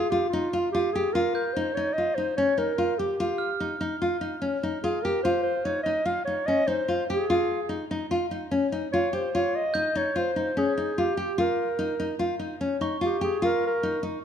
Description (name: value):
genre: contemporary instrumental, chamber music in an uneven meter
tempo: 146 BPM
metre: 5/4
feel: straight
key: Eb mixolydian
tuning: A4 = 442 Hz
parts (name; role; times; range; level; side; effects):
- dark clarinet; melody; 0.0-14.0 s; F4 to F5; -27 LUFS; right 1 dB; none
- nylon-string guitar; arpeggios; 0.0-14.2 s; Db4 to G4; -26 LUFS; left 1 dB; none
- glockenspiel with soft plastic mallets; texture; 1.4-4.6, 9.7-13.6 s; Db6 to G6; -36 LUFS; right 1 dB; none
room: light reverb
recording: dark, warm production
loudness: -24 LUFS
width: side -8 dB against mid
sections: 0.0-1.1 A section; 1.1-14.2 B section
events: none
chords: 0.0 Cm/Eb (rootless); 1.1 Eb9; 13.4 F7(no3)